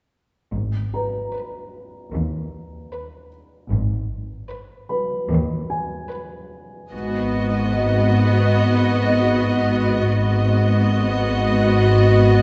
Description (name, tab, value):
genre	cinematic, suspense film score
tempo	75 BPM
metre	4/4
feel	straight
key	G# minor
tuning	A4 = 440 Hz
part	rich symphonic double bass section	bass	0.5-12.4 s	G#1 to D#2	-23 LUFS	equal	none
part	warm symphonic cello section	bass	0.5-12.4 s	D#2 to G#2	-26 LUFS	equal	none
part	dark grand piano	texture	0.9-12.4 s	B4 to B5	-32 LUFS	equal	none
part	dark symphonic violin section	melody	1.3-12.4 s	B4 to D#5	-28 LUFS	equal	none
part	clear symphonic viola section	accompaniment	6.9-12.4 s	B3 to F#4	-23 LUFS	equal	none
room	wet recital hall reverb, RT60 1.6 s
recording	heard from further back in the room, nothing above 7.9 kHz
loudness	-19 LUFS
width	mono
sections	0.5-6.9 A section; 6.9-12.4 B section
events	none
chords	0.5 G#m; 6.9 G#m7